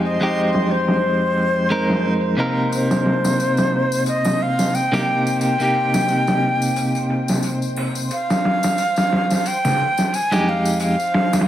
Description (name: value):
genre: trip hop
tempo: 89 BPM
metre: 4/4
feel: swing 56% on 16ths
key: C minor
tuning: A4 = 440 Hz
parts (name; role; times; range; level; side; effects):
- silver concert flute; melody; 0.0-11.5 s; C5 to Ab5; -21 LUFS; equal; tape echo
- clean electric guitar; accompaniment; 0.0-11.0 s; F2 to Bb4; -20 LUFS; equal; tremolo
- trip hop sampler-style drum kit; drums; 0.0-11.5 s; hi-hat, snare drum; -22 LUFS; equal; overdrive, low-pass filter on hats, low-pass filter on snare, low-pass filter on room
- backwards swelling texture; texture; 0.0-11.5 s; C5; -31 LUFS; right 2 dB; built-in reverb
- tambourine and triangle; percussion; 2.7-11.5 s; none; -33 LUFS; left 6 dB; none
room: moderate echo chamber reverb, RT60 1.9 s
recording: vinyl crackle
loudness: -17 LUFS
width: side -12 dB against mid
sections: 0.0-11.5 A section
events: none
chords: 0.0 Fm7; 2.7 Cm7; 8.1 Fm7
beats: | 0.02 0.69 1.37 2.04 | 2.72 3.39 4.07 4.74 | 5.41 6.09 6.76 7.44 | 8.11 8.79 9.46 10.13 | 10.81